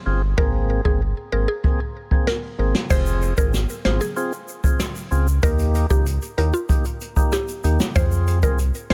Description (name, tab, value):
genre	dancehall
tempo	95 BPM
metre	4/4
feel	straight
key	F minor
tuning	A4 = 440 Hz
part	percussive tonewheel organ	accompaniment	0.1-8.9 s	Bb3 to Ab4	-30 LUFS	equal	slow rotary speaker, sidechain pumping
part	round analog bass	bass	0.1-8.9 s	F1 to F2	-22 LUFS	equal	none
part	mallet-like synth pluck	melody	0.4-8.9 s	F4 to C5	-30 LUFS	equal	chorus, delay
part	jazz brush drum kit	drums	0.4-8.9 s	crash cymbal, hi-hat, kick drum, rim click, snare drum	-24 LUFS	equal	none
part	egg shaker and timbales	percussion	2.9-8.9 s	none	-38 LUFS	equal	none
room	little or no reverb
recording	none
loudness	-21 LUFS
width	mono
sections	0.0-2.9 A section; 2.9-8.9 B section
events	none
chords	0.4 Abadd9; 2.9 Fm; 5.4 Eb; 8.0 Fm